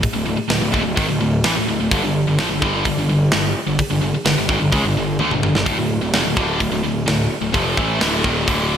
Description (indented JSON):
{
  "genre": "heavy metal",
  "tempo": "128 BPM",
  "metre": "4/4",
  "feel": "straight",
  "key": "D minor",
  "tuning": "A4 = 439 Hz",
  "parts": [
    { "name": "high-gain distorted guitar", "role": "riff", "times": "0.0-8.8 s", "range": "D2 to A3", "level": "-18 LUFS", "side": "equal", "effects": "distortion" },
    { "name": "fuzz picked electric bass", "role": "bass", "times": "0.0-8.8 s", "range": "D1 to D2", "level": "-23 LUFS", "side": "equal", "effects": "overdrive" },
    { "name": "tight metal drum kit", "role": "drums", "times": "0.0-8.6 s", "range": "hi-hat, kick drum, snare drum, toms", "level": "-22 LUFS", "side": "equal", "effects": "gated reverb" }
  ],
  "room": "moderate lush hall reverb, RT60 1.6 s, studio reverb",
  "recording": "bright 1980s-style digital production",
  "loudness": "-16 LUFS",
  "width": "side -8 dB against mid",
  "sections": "0.0-8.8 A section",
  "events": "drum fill 5.2-5.7",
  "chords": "0.0 D5; 1.9 G5; 5.7 Dm"
}